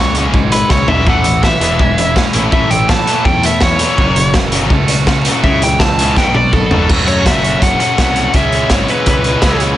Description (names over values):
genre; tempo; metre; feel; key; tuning
indie rock; 165 BPM; 4/4; straight; unclear; A4 = 439 Hz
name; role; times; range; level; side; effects
nasal lead guitar with a parked wah; melody; 0.0-9.6 s; A4 to A5; -16 LUFS; equal; overdrive, digital delay
biting overdriven guitar; riff; 0.0-9.8 s; F#2 to C#4; -19 LUFS; left 7 dB; none
cranked stack guitar; riff; 0.0-9.8 s; E2 to F#4; -18 LUFS; right 5 dB; overdrive, wide subtle chorus, digital delay
fuzz picked electric bass; bass; 0.0-9.7 s; E1 to F#2; -18 LUFS; equal; overdrive
raw garage drum kit; drums; 0.1-9.7 s; crash cymbal, hi-hat, kick drum, snare drum, toms; -14 LUFS; equal; none
phased string machine; sustained chords; 1.1-6.9 s; E3 to E5; -28 LUFS; left 1 dB; none
room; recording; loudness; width
small room ambience; nothing above 10.6 kHz; -10 LUFS; side -13 dB against mid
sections
0.0-6.9 A section; 6.9-9.8 B section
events
lead electric guitar solo 0.0-6.9; drum fill 0.7-1.1, 6.2-6.9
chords
0.0 C#m; 1.1 A; 1.6 E6; 2.3 A; 4.0 F#m7; 5.4 C#m; 6.2 B7; 6.9 F#m7; 8.3 C#m7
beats
0.34 0.70 | 1.07 1.43 1.80 2.16 | 2.52 2.89 3.25 3.62 | 3.98 4.34 4.71 5.07 | 5.43 5.79 6.16 6.52 | 6.88 7.25 7.61 7.98 | 8.34 8.70 9.07 9.43